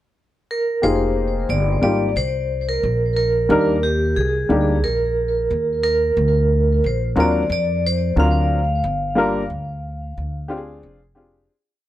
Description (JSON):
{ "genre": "hip hop, jazz-hop", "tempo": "90 BPM", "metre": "4/4", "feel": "swing 59% on 16ths", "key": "F dorian", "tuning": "A4 = 439 Hz", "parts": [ { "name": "vibraphone with hard mallets", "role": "melody", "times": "0.5-10.8 s", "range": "G4 to E#5", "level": "-21 LUFS", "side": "right 1 dB", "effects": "plate reverb, tape echo" }, { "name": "warm upright piano", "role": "accompaniment", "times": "0.8-11.5 s", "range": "F#3 to Bb4", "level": "-19 LUFS", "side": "left 1 dB", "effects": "plate reverb" }, { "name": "upright bass", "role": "bass", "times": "0.8-11.5 s", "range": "F1 to E#2", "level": "-21 LUFS", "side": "equal", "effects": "none" } ], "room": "light reverb", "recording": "dry, gritty hardware recording", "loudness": "-17 LUFS", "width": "side -13 dB against mid", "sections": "0.0-0.8 pickup bar; 0.8-11.5 A section", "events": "fade-out 8.8-11.5", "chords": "0.0 N.C.; 0.8 Fm11; 3.5 Ebmaj7; 6.2 D7alt; 8.8 Gm7; 10.8 Fm69", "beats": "0.16 | 0.83 1.50 2.16 2.83 | 3.50 4.16 4.83 5.50 | 6.16 6.83 7.50 8.16 | 8.83 9.49 10.16 10.83" }